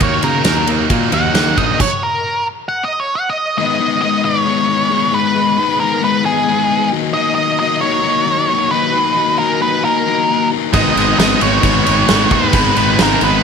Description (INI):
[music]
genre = quiet-loud alternative rock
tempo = 134 BPM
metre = 4/4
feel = straight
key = G# minor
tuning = A4 = 440 Hz
[part]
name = octave-fuzz lead guitar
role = melody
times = 0.0-13.4 s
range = G#4 to F#5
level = -16 LUFS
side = right 1 dB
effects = distortion, digital delay
[part]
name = crunchy overdriven guitar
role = riff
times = 0.0-13.4 s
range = G#2 to D#4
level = -18 LUFS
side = left 12 dB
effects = none
[part]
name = scooped high-gain guitar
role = riff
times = 0.0-1.8, 10.7-13.4 s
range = G#2 to D#4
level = -18 LUFS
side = right 14 dB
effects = distortion
[part]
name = fuzz picked electric bass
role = bass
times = 0.0-1.8, 10.7-13.4 s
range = G#1 to C#3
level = -20 LUFS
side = right 1 dB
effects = overdrive
[part]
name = big rock drum kit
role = drums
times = 0.0-1.9, 10.7-13.3 s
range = crash cymbal, kick drum, ride cymbal, snare drum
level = -17 LUFS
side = right 1 dB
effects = none
[part]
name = rich chamber string section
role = sustained chords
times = 3.6-13.4 s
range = F#4 to B5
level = -26 LUFS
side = equal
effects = none
[part]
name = high-gain distorted guitar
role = riff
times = 10.7-13.4 s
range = G#2 to G#3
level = -21 LUFS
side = right 1 dB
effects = distortion
[sound]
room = moderate large studio reverb, RT60 1.4 s, studio reverb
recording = none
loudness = -12 LUFS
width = side -6 dB against mid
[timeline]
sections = 0.0-3.6 A section; 3.6-13.4 B section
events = lead electric guitar solo 0.0-3.6; stop 1.8-3.6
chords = 0.0 D#m; 3.6 G#m; 6.9 D#m; 10.7 G#m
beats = | 0.01 0.46 0.91 1.35 | 1.80 2.25 2.69 3.14 | 3.58 4.03 4.47 4.92 | 5.36 5.81 6.25 6.70 | 7.15 7.59 8.04 8.49 | 8.94 9.39 9.84 10.29 | 10.73 11.18 11.63 12.08 | 12.53 12.98